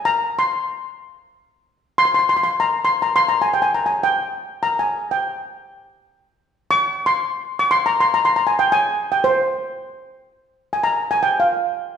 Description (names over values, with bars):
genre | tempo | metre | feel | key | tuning
Persian modal ensemble | free time | none | none | C dastgah homayun | A4 = 440 Hz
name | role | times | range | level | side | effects
steel pan | solo | 0.0-12.0 s | C5 to Db6+45c | -17 LUFS | left 1 dB | none
room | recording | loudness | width
wet recital hall reverb, RT60 1.4 s | recorded in a church or concert hall | -17 LUFS | side -8 dB against mid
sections
0.0-10.3 A section; 10.3-12.0 A section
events
none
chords
none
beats
free time